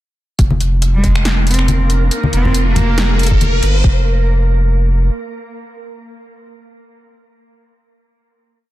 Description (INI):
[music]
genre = deep dubstep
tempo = 139 BPM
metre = 4/4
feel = swing 55% on 16ths, half-time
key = F minor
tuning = A4 = 438 Hz
[part]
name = saturated sub bass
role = bass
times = 0.4-5.1 s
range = F1 to G1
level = -14 LUFS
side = equal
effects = tube saturation
[part]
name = deep house drum kit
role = drums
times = 0.4-3.7 s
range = finger snaps, hi-hat, snare drum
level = -21 LUFS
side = equal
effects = overdrive
[part]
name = electronic kick drum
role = drums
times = 0.4-3.9 s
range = none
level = -14 LUFS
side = equal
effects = overdrive
[part]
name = riser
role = sound effects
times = 1.7-3.8 s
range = none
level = -25 LUFS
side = equal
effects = none
[part]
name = backwards swelling texture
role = texture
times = 0.4-3.9 s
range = Bb3 to Bb4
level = -25 LUFS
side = right 2 dB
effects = built-in reverb
[part]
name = congas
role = percussion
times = 0.5-3.5 s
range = none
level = -20 LUFS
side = left 2 dB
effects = none
[part]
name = clear cello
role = melody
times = 0.9-3.3 s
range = Ab3 to C4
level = -24 LUFS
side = right 1 dB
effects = dub echo
[sound]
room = digital ambience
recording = dense, heavily limited modern master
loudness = -12 LUFS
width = side -16 dB against mid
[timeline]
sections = 0.4-3.8 build; 3.8-7.3 final note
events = build-up 0.4-3.8; riser 1.7-3.8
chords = 0.4 Fsus4; 2.1 N.C.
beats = | 0.39 0.82 1.25 1.69 | 2.12 2.55 2.98 3.41 | 3.84 4.28 4.71